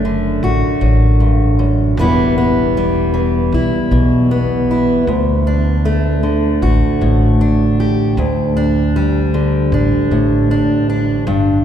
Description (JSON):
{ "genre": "acoustic folk duo or small band", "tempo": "78 BPM", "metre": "4/4", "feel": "straight", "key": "unclear", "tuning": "A4 = 439 Hz", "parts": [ { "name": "fingerpicked steel-string acoustic guitar", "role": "accompaniment", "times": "0.0-11.6 s", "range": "D2 to G4", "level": "-15 LUFS", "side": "equal", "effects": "none" }, { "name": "upright bass", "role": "bass", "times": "0.0-11.6 s", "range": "E1 to D2", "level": "-16 LUFS", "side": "equal", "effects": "none" } ], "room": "wet cathedral reverb, RT60 4.2 s", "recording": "recorded in a church or concert hall", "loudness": "-12 LUFS", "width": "side -9 dB against mid", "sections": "0.0-11.6 A section", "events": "none", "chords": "0.0 D/F#; 2.0 Em; 5.1 D; 8.2 Dsus4" }